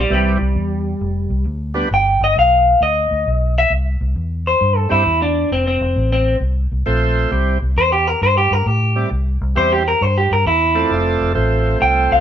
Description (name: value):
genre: electric blues shuffle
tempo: 133 BPM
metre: 4/4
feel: swing 67% on 8ths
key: C major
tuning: A4 = 440 Hz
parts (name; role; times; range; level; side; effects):
- electric guitar through a small old amp; melody; 0.0-12.2 s; G3 to G5; -15 LUFS; equal; none
- vintage muted fingered electric bass; bass; 0.0-12.2 s; F1 to A2; -18 LUFS; equal; none
- overdriven tonewheel organ; accompaniment; 0.1-1.9, 4.9-12.2 s; E3 to D5; -19 LUFS; right 3 dB; slow rotary speaker
room: light reverb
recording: band playing live in one room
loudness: -14 LUFS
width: side -9 dB against mid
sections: 0.0-3.7 A section; 3.7-12.2 B section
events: clean electric guitar solo 0.0-3.7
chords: 0.1 C; 1.0 F5; 1.9 G; 3.7 C; 5.5 F; 7.3 C; 10.9 F